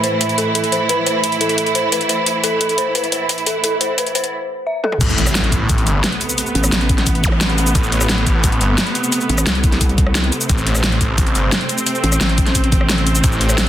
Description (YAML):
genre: dark technical drum and bass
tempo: 175 BPM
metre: 4/4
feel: straight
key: A minor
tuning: A4 = 440 Hz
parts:
  - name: rich studio string section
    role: sustained chords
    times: 0.0-13.7 s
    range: A2 to E4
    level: -20 LUFS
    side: right 2 dB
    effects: sidechain pumping
  - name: dark detuned synth bell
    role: arpeggios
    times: 0.0-5.0 s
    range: A4 to E5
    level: -20 LUFS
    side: left 1 dB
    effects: chorus, vintage 12-bit sampler grit, sidechain pumping, tape echo
  - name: dubstep drum kit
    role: drums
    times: 0.0-13.7 s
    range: crash cymbal, hi-hat, rim click, shaker, snare drum, toms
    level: -19 LUFS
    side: left 1 dB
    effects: none
  - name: snarling distorted saw bass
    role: bass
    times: 5.0-13.7 s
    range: G1 to A1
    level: -17 LUFS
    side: equal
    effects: distortion, overdrive
  - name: electronic kick drum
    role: drums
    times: 5.0-13.3 s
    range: none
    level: -17 LUFS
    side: equal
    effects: overdrive
  - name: impact and zap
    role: sound effects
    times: 5.0-7.3 s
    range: none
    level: -24 LUFS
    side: equal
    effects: none
  - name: pulsing pluck wobble bass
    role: bass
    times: 6.6-13.2 s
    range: A1 to C2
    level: -17 LUFS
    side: equal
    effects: chorus
room: moderate digital room reverb, RT60 1.1 s, digital ambience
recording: dense, heavily limited modern master, high-pass filter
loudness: -14 LUFS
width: side -12 dB against mid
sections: 0.0-5.0 A section; 5.0-13.7 B section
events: build-up 0.0-5.0; filter sweep on synth bell 0.0-5.0; break 4.3-5.0; drum fill 4.8; drop 5.0-13.7; impact 5.0-6.4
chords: 0.0 A5; 5.0 Amadd9